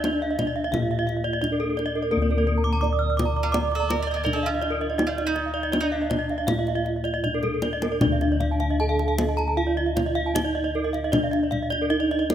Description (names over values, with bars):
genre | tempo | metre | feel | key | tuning
Balinese gamelan | 77-86 BPM | 4/4 | straight | D pelog | A4 = 442 Hz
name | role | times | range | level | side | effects
gamelan-type bronze metallophone | melody | 0.0-12.3 s | Bb3-40c to D5 | -27 LUFS | right 3 dB | slapback echo
mandolin | second line | 0.0-7.0 s | A3-45c to Eb5 | -32 LUFS | right 3 dB | none
gamelan-type bronze metallophone | arpeggios | 0.0-12.3 s | A4-45c to E6+50c | -29 LUFS | left 2 dB | none
gamelan-type bossed gongs | bass | 0.0-12.3 s | D2 to Bb4-40c | -27 LUFS | left 2 dB | none
kendang | percussion | 0.0-12.3 s | none | -29 LUFS | left 2 dB | none
gamelan-type bronze metallophone | arpeggios | 0.1-12.3 s | Bb4-40c to Eb6 | -31 LUFS | right 5 dB | none
room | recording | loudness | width
light reverb | close, detailed microphones | -22 LUFS | side -10 dB against mid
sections
0.0-8.0 A section; 8.0-12.3 B section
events
drum fill 7.2-8.0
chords
none